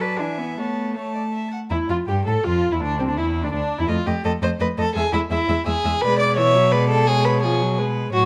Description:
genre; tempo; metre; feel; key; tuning
quick classical-period movement for string quartet; 156-173 BPM; 3/4; rubato; A minor; A4 = 440 Hz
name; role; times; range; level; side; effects
warm violin; melody; 0.0-8.3 s; C4 to A5; -32 LUFS; equal; none
warm violin; second line; 0.0-8.3 s; C4 to F#5; -24 LUFS; equal; none
warm viola; accompaniment; 0.0-8.3 s; E3 to A4; -28 LUFS; equal; none
rich cello; bass; 0.0-8.3 s; C2 to B4; -26 LUFS; equal; none
room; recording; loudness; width
moderate recital hall reverb, RT60 1.4 s; close, detailed microphones, vinyl crackle; -21 LUFS; mono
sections
0.0-1.7 A section; 1.7-8.3 B section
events
none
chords
0.2 E7; 0.6 A; 1.7 A5; 2.8 Cadd9; 3.9 F7; 5.0 E; 6.0 G#dim/B; 7.1 C#7/B

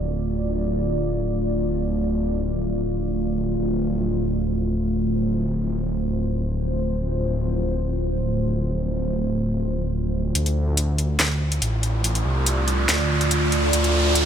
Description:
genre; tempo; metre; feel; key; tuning
deep dubstep; free time; none; none; D minor; A4 = 440 Hz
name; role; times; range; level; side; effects
deep dark ambient pad; sustained chords; 0.0-14.3 s; A3 to D5; -25 LUFS; right 1 dB; chorus, built-in reverb
dark detuned saw bass; bass; 0.0-14.3 s; D1 to D2; -24 LUFS; equal; none
riser; sound effects; 11.5-14.3 s; none; -25 LUFS; right 2 dB; none
deep house drum kit; drums; 10.4-14.2 s; hi-hat, snare drum; -24 LUFS; left 1 dB; overdrive, high-pass filter on snare, low-pass filter on snare, studio ambience, high-pass filter on hats, low-pass filter on hats, high-pass filter on cymbals, low-pass filter on cymbals
room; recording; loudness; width
light reverb; none; -21 LUFS; side -8 dB against mid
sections
0.0-10.4 A section; 10.4-14.3 B section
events
build-up 10.4-14.3; filter sweep on ambient pad 10.4-14.3; riser 11.5-14.3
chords
0.0 Dm

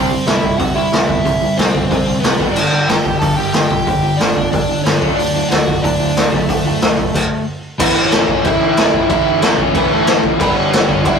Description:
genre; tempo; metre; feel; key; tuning
punk rock; 184 BPM; 4/4; straight; unclear; A4 = 440 Hz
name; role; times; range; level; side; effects
crunchy overdriven guitar; melody; 0.0-11.2 s; A3 to A5; -19 LUFS; equal; none
overdriven semi-hollow guitar; riff; 0.0-11.2 s; G2 to E4; -18 LUFS; right 3 dB; none
sludgy distorted guitar; riff; 0.0-11.2 s; G2 to D4; -24 LUFS; left 8 dB; overdrive
growling picked electric bass; bass; 0.0-11.2 s; F#1 to D3; -26 LUFS; equal; none
raw garage drum kit; drums; 0.3-11.1 s; crash cymbal, hi-hat, kick drum, snare drum; -16 LUFS; equal; none
room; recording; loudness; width
light reverb; rough rehearsal-room recording; -12 LUFS; side -6 dB against mid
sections
0.0-7.8 A section; 7.8-11.2 B section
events
stop 7.1-7.8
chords
0.0 C; 2.4 G5; 5.0 D; 7.8 A; 10.4 G

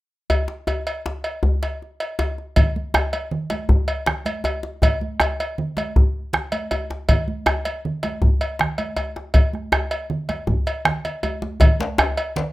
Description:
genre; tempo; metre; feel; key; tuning
west african traditional, West African drum ensemble; 106 BPM (dotted quarters); 12/8; straight; none; none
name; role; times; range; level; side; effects
cowbell; percussion; 0.3-12.3 s; none; -25 LUFS; equal; none
djembe; percussion; 0.3-12.2 s; none; -22 LUFS; left 1 dB; none
bombo; percussion; 2.6-12.2 s; none; -19 LUFS; right 1 dB; none
congas; percussion; 2.6-12.5 s; none; -29 LUFS; right 3 dB; none
djembe; percussion; 11.8-12.5 s; none; -28 LUFS; left 3 dB; none
room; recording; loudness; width
moderate studio reverb, RT60 0.6 s; rough home demo mix; -19 LUFS; side -18 dB against mid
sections
0.3-2.6 A section; 2.6-11.6 B section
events
drum fill 11.0-11.6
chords
none

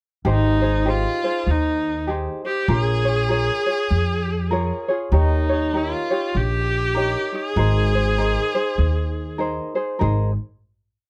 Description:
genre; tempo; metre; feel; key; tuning
Hawaiian; 98 BPM; 4/4; swing 61% on 8ths; Ab major; A4 = 440 Hz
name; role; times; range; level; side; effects
tenor ukulele; accompaniment; 0.2-10.3 s; Eb4 to Db5; -27 LUFS; equal; none
upright bass; bass; 0.2-10.4 s; Ab1 to F2; -23 LUFS; equal; none
rich viola; melody; 0.3-9.4 s; Eb4 to Ab4; -26 LUFS; equal; none
room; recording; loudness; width
light reverb; close, detailed microphones; -21 LUFS; mono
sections
0.2-10.0 A section; 10.0-11.1 final chord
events
none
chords
0.2 Abmaj7; 2.7 Bbm7; 5.1 Eb7; 7.6 Abadd9

